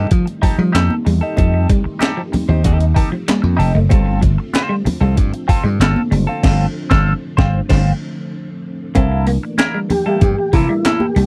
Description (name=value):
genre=funk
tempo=95 BPM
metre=4/4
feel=straight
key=unclear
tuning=A4 = 445 Hz
part: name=clean electric guitar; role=accompaniment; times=0.0-11.2 s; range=Bb3 to C5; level=-24 LUFS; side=equal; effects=wah
part: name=string machine, full ensemble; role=sustained chords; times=0.0-11.3 s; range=D3 to D4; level=-29 LUFS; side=equal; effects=ensemble chorus
part: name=semi-hollow electric guitar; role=riff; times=0.0-11.3 s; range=Eb3 to C4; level=-24 LUFS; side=equal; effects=none
part: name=slap bass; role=bass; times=0.0-11.3 s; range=F1 to F3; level=-17 LUFS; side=equal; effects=none
part: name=breakbeat sampler-style drum kit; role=drums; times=0.1-11.3 s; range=crash cymbal, handclaps, hi-hat, kick drum, snare drum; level=-18 LUFS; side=equal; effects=none
part: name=congas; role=percussion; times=0.8-11.1 s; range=none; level=-24 LUFS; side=equal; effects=none
part: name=mellow tonewheel organ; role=melody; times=9.9-11.3 s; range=E4 to G4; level=-20 LUFS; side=equal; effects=chorus vibrato
room=little or no reverb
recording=dry, close 1970s-style studio recording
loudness=-16 LUFS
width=mono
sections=0.0-9.0 A section; 9.0-11.3 B section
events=band accent 6.4-9.0; tonewheel organ solo 9.0-11.3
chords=0.0 F9; 3.9 G9sus4; 9.0 C13